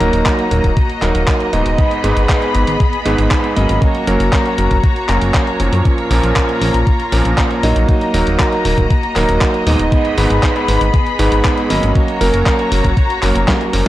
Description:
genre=italo disco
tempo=118 BPM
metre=4/4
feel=straight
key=Eb minor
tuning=A4 = 440 Hz
part: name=clear symphonic string section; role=sustained chords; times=0.0-13.9 s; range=Bb3 to Cb6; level=-19 LUFS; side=left 2 dB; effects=none
part: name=clear electric grand piano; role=stabs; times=0.0-13.9 s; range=Ab2 to Eb5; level=-17 LUFS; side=right 3 dB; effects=analog delay
part: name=chorused synth bass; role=bass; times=0.0-13.8 s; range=Eb1 to Gb2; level=-17 LUFS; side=equal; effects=tube saturation
part: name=clean 12-bit digital drum machine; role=drums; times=0.0-13.8 s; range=handclaps, hi-hat, snare drum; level=-21 LUFS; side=equal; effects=none
part: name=electronic kick drum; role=drums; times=0.3-13.6 s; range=none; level=-15 LUFS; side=equal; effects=none
room=digital ambience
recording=dry, gritty hardware recording, cassette tape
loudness=-12 LUFS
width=side -15 dB against mid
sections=0.0-13.9 A section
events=drum fill 13.5-13.9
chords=0.0 Ebm; 1.8 Abm; 3.8 Gb; 5.9 Bbm; 7.9 Ebm; 9.9 Abm; 12.0 Gb

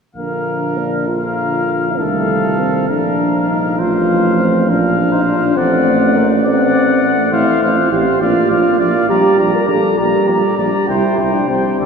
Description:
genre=classical, brass quintet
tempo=67 BPM (dotted quarters)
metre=6/8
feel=rubato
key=Bb major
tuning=A4 = 439 Hz
part: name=clear trumpet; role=melody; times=0.2-11.9 s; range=D5 to Bb5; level=-20 LUFS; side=left 4 dB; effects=none
part: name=clear trumpet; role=second line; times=0.2-11.9 s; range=A4 to D5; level=-22 LUFS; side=right 4 dB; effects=none
part: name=mellow French horn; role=accompaniment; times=0.2-11.9 s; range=A3 to Bb4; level=-16 LUFS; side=left 1 dB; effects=none
part: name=mellow trombone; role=accompaniment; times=0.2-11.9 s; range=D3 to C4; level=-22 LUFS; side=right 2 dB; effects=none
part: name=warm tuba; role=bass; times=0.2-11.9 s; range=A1 to D2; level=-18 LUFS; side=right 1 dB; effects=none
room=wet cathedral reverb, RT60 5.8 s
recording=heard from further back in the room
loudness=-12 LUFS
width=side -6 dB against mid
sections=0.2-11.9 A section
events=none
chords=0.2 Bb; 2.0 F7/C; 2.9 Bb; 3.8 F/A; 4.7 Bb; 5.6 D7/A; 7.3 F/A; 8.2 Bb; 9.1 Gm/Bb; 10.9 C

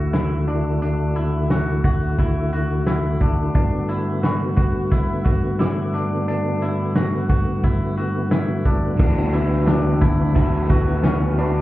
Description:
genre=dream pop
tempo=88 BPM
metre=4/4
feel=straight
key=D major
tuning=A4 = 445 Hz
part: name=tonewheel organ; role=sustained chords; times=0.0-11.6 s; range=D2 to F#4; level=-20 LUFS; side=equal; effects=chorus vibrato, fast rotary speaker
part: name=direct-recorded clean electric guitar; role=arpeggios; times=0.0-11.6 s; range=C#4 to F#4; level=-27 LUFS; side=left 2 dB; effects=lush chorus, ping-pong delay
part: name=loose indie drum kit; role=drums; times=0.1-11.5 s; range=crash cymbal, hi-hat, kick drum, ride cymbal, snare drum, tambourine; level=-21 LUFS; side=equal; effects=none
part: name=soft synth bell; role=texture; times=4.2-11.6 s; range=A5 to D6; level=-36 LUFS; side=left 1 dB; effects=chorus, phaser, ping-pong delay
part: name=crunchy overdriven guitar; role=accompaniment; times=9.0-11.6 s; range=D3 to B4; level=-23 LUFS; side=equal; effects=tremolo, wide subtle chorus
room=moderate concert hall reverb, RT60 2.2 s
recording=heard muffled through a wall, club reverb, EQ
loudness=-18 LUFS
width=side -16 dB against mid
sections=0.0-9.0 A section; 9.0-11.6 B section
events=none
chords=0.0 Dadd9; 3.5 Gmaj7; 9.0 D69

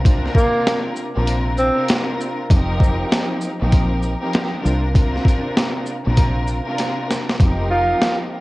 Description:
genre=hip hop, boom-bap hip-hop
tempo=98 BPM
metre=4/4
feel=swing 62% on 16ths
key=unclear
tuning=A4 = 444 Hz
part: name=warm studio string section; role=accompaniment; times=0.0-8.4 s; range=C3 to Bb4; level=-23 LUFS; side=equal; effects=cassette tape, high-pass filter, low-pass filter
part: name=deep dub fingered electric bass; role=bass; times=0.0-7.9 s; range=F1 to C2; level=-21 LUFS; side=equal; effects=none
part: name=boom bap sampler-style drum kit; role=drums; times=0.1-8.2 s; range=hi-hat, kick drum, shaker, snare drum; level=-18 LUFS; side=equal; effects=cassette tape
part: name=breathy tenor saxophone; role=melody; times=0.4-1.9, 7.7-8.2 s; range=Bb3 to F4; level=-20 LUFS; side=right 1 dB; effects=high-pass filter, low-pass filter, cassette tape, analog delay
room=light reverb, digital ambience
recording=home recording on cassette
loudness=-16 LUFS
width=side -20 dB against mid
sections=0.0-7.4 A section; 7.4-8.4 B section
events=drum fill 6.8-7.4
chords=0.0 C9sus4; 2.5 F9sus4; 4.6 C9sus4; 7.4 F9sus4

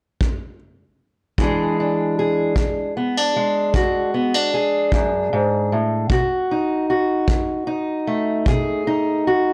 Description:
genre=acoustic country blues, solo or duo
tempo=51 BPM (dotted quarters)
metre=12/8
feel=straight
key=E mixolydian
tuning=A4 = 440 Hz
part: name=kick drum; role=drums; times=0.2-8.6 s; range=none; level=-23 LUFS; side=equal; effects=none
part: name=fingerpicked steel-string acoustic guitar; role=accompaniment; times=1.4-9.5 s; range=E2 to G#4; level=-20 LUFS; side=equal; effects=none
room=moderate studio reverb, RT60 0.7 s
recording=none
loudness=-20 LUFS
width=mono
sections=0.0-1.4 A section; 1.4-9.5 B section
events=none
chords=0.0 N.C.; 1.4 E7; 6.1 B7

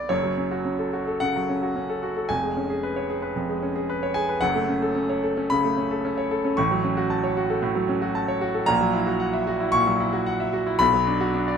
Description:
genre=classical, virtuoso piano study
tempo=113 BPM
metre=4/4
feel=rubato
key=F# minor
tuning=A4 = 440 Hz
part: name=bright concert grand piano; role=solo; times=0.0-11.6 s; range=E#1 to C#6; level=-22 LUFS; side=equal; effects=none
room=little or no reverb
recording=close, detailed microphones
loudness=-22 LUFS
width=side -7 dB against mid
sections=0.1-11.6 A section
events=none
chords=0.1 F#m; 2.3 C#7/E#; 4.4 F#m; 6.6 F#m/A; 8.7 F#7/A#; 10.8 Bm

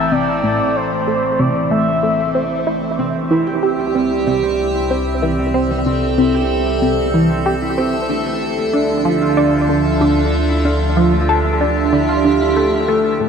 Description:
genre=ambient, sequencer-driven space music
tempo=94 BPM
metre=4/4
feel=straight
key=unclear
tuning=A4 = 439 Hz
part: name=expressive synth lead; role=melody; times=0.0-2.6 s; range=C5 to E5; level=-21 LUFS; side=equal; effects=wide subtle chorus, tape echo
part: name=evolving wavetable pad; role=sustained chords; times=0.0-13.3 s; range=D3 to E5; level=-19 LUFS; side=equal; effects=phaser, built-in reverb
part: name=analog drone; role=bass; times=0.0-13.3 s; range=A1 to D2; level=-24 LUFS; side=equal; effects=chorus
part: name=tight sequenced synth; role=riff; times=0.1-13.3 s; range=A2 to A4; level=-18 LUFS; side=equal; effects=chorus, phaser, tape echo
part: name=concert harp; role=arpeggios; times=3.0-13.3 s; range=G3 to A4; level=-20 LUFS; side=moving between equal and right 8 dB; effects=auto-pan, tape echo
part: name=bubbling stepped-filter texture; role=texture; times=13.2-13.3 s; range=none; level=barely audible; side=none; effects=none
room=wet huge ambient reverb, RT60 7.9 s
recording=none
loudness=-14 LUFS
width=side -6 dB against mid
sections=0.0-13.2 A section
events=fade-in on synth drone 0.0-13.2; filter sweep on synth arpeggio sound 0.0-13.2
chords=0.0 Am; 3.0 C; 8.1 Dmadd9

